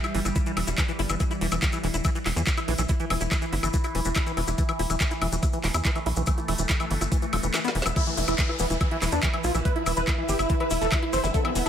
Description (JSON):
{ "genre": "psychedelic trance", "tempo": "142 BPM", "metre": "4/4", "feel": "straight", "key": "E minor", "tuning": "A4 = 440 Hz", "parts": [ { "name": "overtone-sweeping drone", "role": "sustained chords", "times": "0.0-11.7 s", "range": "E3 to E4", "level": "-32 LUFS", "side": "equal", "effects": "chorus, built-in reverb, sidechain pumping" }, { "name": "liquid acid bass", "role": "riff", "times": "0.0-11.7 s", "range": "E3 to E4", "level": "-32 LUFS", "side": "moving between left 6 dB and right 6 dB", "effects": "chorus, auto-pan, sidechain pumping, ping-pong delay" }, { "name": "garage drum kit", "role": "drums", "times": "0.0-11.7 s", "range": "handclaps, hi-hat, snare drum, woodblock", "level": "-30 LUFS", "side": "left 1 dB", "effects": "overdrive, small room ambience" }, { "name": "maracas", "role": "percussion", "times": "0.0-11.7 s", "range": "none", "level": "-36 LUFS", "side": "left 5 dB", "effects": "none" }, { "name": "tight sequencer bass", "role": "bass", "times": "0.1-11.7 s", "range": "E1 to E2", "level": "-28 LUFS", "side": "equal", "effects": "none" }, { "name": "electronic kick drum", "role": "drums", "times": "0.4-11.4 s", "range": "none", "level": "-25 LUFS", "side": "equal", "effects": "overdrive, small room ambience" }, { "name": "wide unison lead", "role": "melody", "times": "8.0-11.7 s", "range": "E3 to C5", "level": "-29 LUFS", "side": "equal", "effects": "phaser, sidechain pumping, ping-pong delay" }, { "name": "downlifter and zap", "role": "sound effects", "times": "8.0-11.3 s", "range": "none", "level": "-35 LUFS", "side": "left 1 dB", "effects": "none" }, { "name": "clear studio string section", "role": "texture", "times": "8.0-11.7 s", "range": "E4 to E5", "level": "-35 LUFS", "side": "equal", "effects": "sidechain pumping" } ], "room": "little or no reverb", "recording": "none", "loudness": "-23 LUFS", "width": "side -9 dB against mid", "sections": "0.0-8.0 A section; 8.0-11.7 B section", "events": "kick drops out 7.5-8.0; drum fill 7.5-8.0; drop 8.0-11.7", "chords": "0.0 E5" }